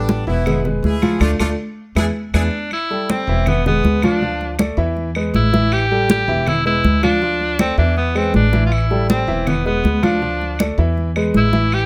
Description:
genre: latin, salsa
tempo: 160 BPM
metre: 4/4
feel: straight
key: unclear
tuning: A4 = 440 Hz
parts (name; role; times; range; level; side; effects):
- bright horn section; melody; 0.0-2.4 s; A3 to G#4; -29 LUFS; equal; plate reverb
- clear concert grand piano; accompaniment; 0.0-11.8 s; E3 to F5; -24 LUFS; equal; none
- upright bass; bass; 0.0-11.9 s; E1 to E2; -22 LUFS; equal; none
- congas; percussion; 0.1-11.9 s; none; -22 LUFS; equal; none
- claves; percussion; 0.5-11.9 s; none; -32 LUFS; equal; none
- bright tenor saxophone; melody; 2.3-11.9 s; B3 to G4; -23 LUFS; equal; plate reverb
room: light reverb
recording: none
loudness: -17 LUFS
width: mono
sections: 0.0-2.7 A section; 2.7-11.9 B section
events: band accent 1.2-2.7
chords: 0.5 E7; 1.2 Dm; 2.0 E7; 2.7 Am7; 3.5 E7; 4.2 Dm; 5.0 E; 5.7 A5; 6.5 E7; 7.2 Dm; 8.0 E7; 8.7 Am7; 9.5 E7; 10.2 Dm; 11.0 E

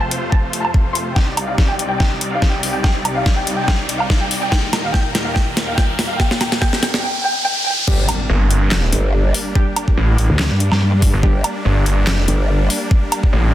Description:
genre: heavy wobble dubstep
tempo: 143 BPM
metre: 4/4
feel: swing 54% on 16ths, half-time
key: unclear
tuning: A4 = 439 Hz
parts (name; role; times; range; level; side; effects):
- dark studio violin section; melody; 0.0-7.8 s; F5 to C6; -23 LUFS; left 1 dB; dub echo
- supersaw chords; sustained chords; 0.0-13.5 s; C2 to D5; -24 LUFS; equal; sidechain pumping
- riser and impact; sound effects; 0.0-9.6 s; none; -25 LUFS; equal; none
- dubstep drum kit; drums; 0.1-13.2 s; crash cymbal, handclaps, hi-hat, snare drum, woodblock; -21 LUFS; equal; overdrive
- electronic kick drum; drums; 0.3-13.3 s; none; -16 LUFS; equal; none
- orchestra-hit-like synth stab; stabs; 7.9-11.4 s; G3 to G4; -28 LUFS; right 1 dB; built-in reverb, dub echo
- growl bass; bass; 7.9-12.7 s; G1 to G2; -16 LUFS; equal; distortion, chorus, overdrive
- snarling distorted saw bass; bass; 8.3-13.5 s; G1 to A1; -15 LUFS; equal; distortion, overdrive
room: light reverb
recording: dense, heavily limited modern master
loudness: -14 LUFS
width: side -13 dB against mid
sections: 0.0-7.9 A section; 7.9-13.5 B section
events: build-up 0.0-7.9; riser 0.0-7.9; drum fill 1.2-7.0; drop 7.9-13.5; impact 7.9-9.6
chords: 0.0 F; 1.2 Cmadd9; 4.5 Eb; 7.9 Gm

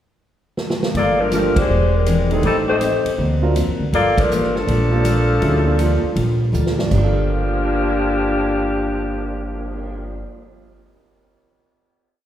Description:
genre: jazz, big band swing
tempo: 161 BPM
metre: 4/4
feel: swing 66% on 8ths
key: G minor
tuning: A4 = 440 Hz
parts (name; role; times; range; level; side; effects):
- swinging big-band drum kit; drums; 0.6-9.8 s; crash cymbal, cymbal swell, hi-hat, kick drum, ride cymbal, snare drum; -25 LUFS; equal; none
- picked steel-string acoustic guitar; accompaniment; 0.9-10.5 s; A2 to A4; -25 LUFS; left 1 dB; none
- upright bass; bass; 0.9-10.2 s; E1 to E#2; -20 LUFS; equal; none
- warm saxophone section; melody; 1.0-10.2 s; D3 to D5; -19 LUFS; left 2 dB; none
- warm concert grand piano; accompaniment; 1.3-10.4 s; G2 to A#4; -26 LUFS; right 2 dB; none
room: wet recital hall reverb, RT60 1.5 s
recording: heard from further back in the room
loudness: -16 LUFS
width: side -11 dB against mid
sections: 0.0-1.0 pickup bar; 1.0-6.9 A section; 6.9-9.9 final chord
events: drum fill 0.6-1.0, 6.5-6.9; band accent 1.5, 4.1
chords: 0.0 N.C.; 1.0 Gm9; 1.7 E7alt; 2.4 Am7b5; 3.2 D7alt; 3.9 Gm9

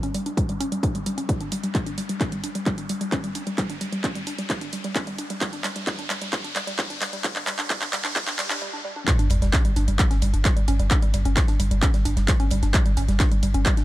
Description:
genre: driving peak-time techno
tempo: 131 BPM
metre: 4/4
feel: straight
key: unclear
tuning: A4 = 440 Hz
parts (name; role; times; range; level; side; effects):
- woody wave-folded pluck; riff; 0.0-13.8 s; G3 to D4; -30 LUFS; equal; chorus, tube saturation, sidechain pumping
- techno drum kit; drums; 0.0-13.8 s; handclaps, hi-hat; -28 LUFS; right 1 dB; high-pass filter on hats, high-pass filter on snare, high-pass filter on room
- riser, swell and sub drop; sound effects; 0.0-10.9 s; none; -34 LUFS; equal; none
- electronic kick drum; drums; 0.4-13.8 s; none; -23 LUFS; equal; none
- damped 70s drum kit; drums; 9.1-13.8 s; ride cymbal, snare drum; -42 LUFS; left 3 dB; high-pass filter on cymbals, high-pass filter on snare, high-pass filter on room
- saturated sub bass; bass; 9.3-13.7 s; G1; -22 LUFS; equal; tube saturation, sidechain pumping, low-pass filter
room: light reverb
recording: high-pass filter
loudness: -21 LUFS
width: side -16 dB against mid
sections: 0.0-9.1 A section; 9.1-13.8 B section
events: build-up 0.0-9.1; riser 0.0-8.6; filter sweep on synth arpeggio sound 0.0-9.1; filter sweep 0.0-9.1; drum fill 1.7-8.6; swell 8.2-9.1; break 8.6-9.1; drop 9.1-13.8; impact 9.1-10.9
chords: 0.0 G5

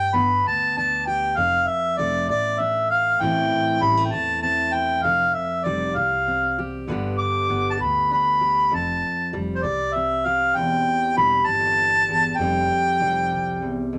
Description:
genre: acoustic folk duo or small band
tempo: 65 BPM (dotted quarters)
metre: 6/8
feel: straight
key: G mixolydian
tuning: A4 = 440 Hz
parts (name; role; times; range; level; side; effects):
- mellow harmonica; melody; 0.0-13.9 s; C5 to D6; -22 LUFS; equal; none
- fingerpicked steel-string acoustic guitar; accompaniment; 0.0-14.0 s; E2 to G4; -30 LUFS; equal; none
- upright bass; bass; 0.2-14.0 s; E1 to E2; -35 LUFS; equal; none
room: moderate club reverb, RT60 0.8 s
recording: none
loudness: -21 LUFS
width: mono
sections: 0.0-14.0 A section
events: none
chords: 0.0 G; 1.4 Dm/F; 3.2 Am; 5.0 Fsus2; 6.9 G; 8.7 Fadd9; 10.6 Emadd11; 12.4 Fsus2

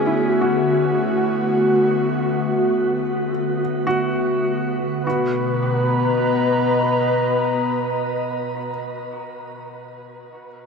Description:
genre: ambient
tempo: free time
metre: none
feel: none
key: unclear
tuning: A4 = 441 Hz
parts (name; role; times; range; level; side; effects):
- breathy flute-like synth lead; melody; 0.0-8.7 s; F#4 to B4; -22 LUFS; left 1 dB; wide subtle chorus, shimmer reverb, tape echo
- warbly tape-like pad; sustained chords; 0.0-9.2 s; B2 to A#5; -22 LUFS; left 1 dB; chorus, built-in reverb, shimmer reverb
- felt-muted upright piano; arpeggios; 0.0-10.7 s; C#4 to F#4; -28 LUFS; left 1 dB; shimmer reverb, tape echo
- organ-like drone; drone; 0.0-8.7 s; B3; -29 LUFS; right 2 dB; ensemble chorus, built-in reverb
room: wet huge ambient reverb, RT60 8.5 s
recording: none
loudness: -18 LUFS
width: side -5 dB against mid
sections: 0.0-5.1 A section; 5.1-9.7 B section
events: filter sweep on ambient pad 0.0-5.1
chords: 0.0 Dmaj7; 5.1 Bmaj7

